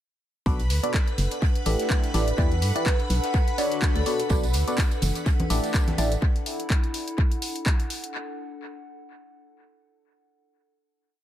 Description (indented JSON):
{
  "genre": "piano house",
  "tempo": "125 BPM",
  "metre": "4/4",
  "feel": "swing 56% on 16ths",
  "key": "D major",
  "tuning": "A4 = 440 Hz",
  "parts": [
    { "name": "string machine, violins", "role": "sustained chords", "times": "0.5-6.2 s", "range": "B4 to B5", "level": "-36 LUFS", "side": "left 1 dB", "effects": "ensemble chorus, sidechain pumping" },
    { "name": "barking FM electric piano", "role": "riff", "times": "0.5-6.1 s", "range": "B2 to D5", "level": "-30 LUFS", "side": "equal", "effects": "phaser, sidechain pumping, analog delay" },
    { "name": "organ-like FM bass", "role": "bass", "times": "0.5-6.2 s", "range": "F#1 to G2", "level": "-24 LUFS", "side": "equal", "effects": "tube saturation, sidechain pumping" },
    { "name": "electronic kick drum", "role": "drums", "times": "0.5-7.8 s", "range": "none", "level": "-23 LUFS", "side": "equal", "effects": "small room ambience" },
    { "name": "oversized low-tuned drum kit", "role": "drums", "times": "0.5-6.1 s", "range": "hi-hat, snare drum", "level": "-42 LUFS", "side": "right 4 dB", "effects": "sidechain pumping on hats, high-pass filter on hats, small room ambience, high-pass filter on snare, high-pass filter on room, analog delay" },
    { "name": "warbly tape-like pad", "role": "texture", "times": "0.5-8.1 s", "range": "D4 to F#5", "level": "-34 LUFS", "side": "left 1 dB", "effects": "chorus, built-in reverb, sidechain pumping" },
    { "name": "house drum kit", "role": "drums", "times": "0.6-8.1 s", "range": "handclaps, hi-hat", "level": "-32 LUFS", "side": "left 1 dB", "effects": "small room ambience, analog delay" },
    { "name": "vibraphone with hard mallets", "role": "melody", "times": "1.7-4.3 s", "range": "A4 to B4", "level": "-34 LUFS", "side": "right 2 dB", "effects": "analog delay" },
    { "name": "tambourine and congas", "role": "percussion", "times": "4.3-6.2 s", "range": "none", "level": "-33 LUFS", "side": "right 1 dB", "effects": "none" }
  ],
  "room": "light reverb, small room ambience",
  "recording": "echo-heavy mix",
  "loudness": "-22 LUFS",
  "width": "side -12 dB against mid",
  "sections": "0.5-8.1 groove",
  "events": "none",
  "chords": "0.5 Bm7; 1.4 A7sus4; 2.4 Em7; 3.3 Dmaj7; 4.3 Bm7; 5.3 A7sus4; 6.2 Dadd9"
}